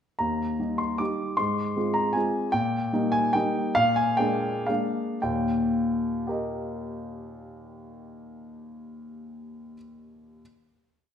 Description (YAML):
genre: classical, piano waltz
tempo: 103-160 BPM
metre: 3/4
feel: rubato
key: Eb major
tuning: A4 = 439 Hz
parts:
  - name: warm grand piano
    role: solo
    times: 0.2-10.4 s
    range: Eb2 to D6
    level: -25 LUFS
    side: equal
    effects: none
room: wet recital hall reverb, RT60 1.4 s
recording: minimal, uncompressed stereo recording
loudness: -24 LUFS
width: side -8 dB against mid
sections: 0.2-5.2 A section; 5.2-8.3 final chord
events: slowing down 2.0-5.2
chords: 0.2 Eb; 1.4 Fm/Ab; 2.5 Eb/Bb; 3.8 Bb7; 5.2 Eb